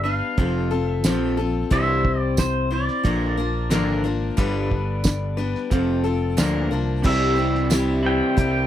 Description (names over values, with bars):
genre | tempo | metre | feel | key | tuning
folk rock and heartland rock | 90 BPM | 4/4 | straight | C mixolydian | A4 = 440 Hz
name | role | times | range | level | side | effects
pedal steel guitar | melody | 0.0-8.7 s | C5 to G5 | -27 LUFS | right 2 dB | none
picked steel-string acoustic guitar | accompaniment | 0.0-8.7 s | G2 to C5 | -25 LUFS | left 5 dB | none
electric guitar through a small old amp | riff | 0.0-8.7 s | F2 to E4 | -26 LUFS | right 2 dB | none
picked electric bass | bass | 0.0-8.7 s | F1 to D2 | -25 LUFS | right 1 dB | none
cloth-damped thuddy drum kit | drums | 0.4-8.5 s | crash cymbal, hi-hat, kick drum, snare drum | -22 LUFS | right 1 dB | none
tambourine | percussion | 1.0-7.9 s | none | -32 LUFS | right 10 dB | none
room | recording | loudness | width
little or no reverb | dry, close 1970s-style studio recording | -19 LUFS | side -11 dB against mid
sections
0.0-7.0 A section; 7.0-8.7 B section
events
none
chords
0.4 F; 1.7 C; 3.0 Bb; 4.4 G; 5.7 F; 6.4 Bb; 7.0 C